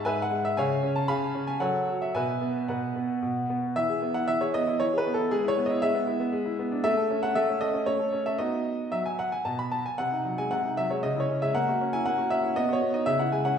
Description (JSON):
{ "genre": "classical-period piano sonatina", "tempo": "116 BPM", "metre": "3/4", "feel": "straight", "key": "E major", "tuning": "A4 = 440 Hz", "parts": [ { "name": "bright baby grand piano", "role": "solo", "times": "0.0-13.6 s", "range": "G#2 to B5", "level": "-25 LUFS", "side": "equal", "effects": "none" } ], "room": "wet recital hall reverb, RT60 1.7 s", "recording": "heard from further back in the room", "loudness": "-25 LUFS", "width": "side -7 dB against mid", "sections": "0.0-3.8 A section; 3.8-13.6 B section", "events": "none", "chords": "0.0 E/G#; 0.6 C#; 1.6 F#m; 2.1 Bsus4; 3.2 N.C.; 3.8 E; 5.3 E/G#; 6.3 E7/G#; 6.8 A; 8.4 B; 10.0 G#7/B#; 11.0 C#m; 11.5 F#7/A#; 12.6 B; 13.1 C#m" }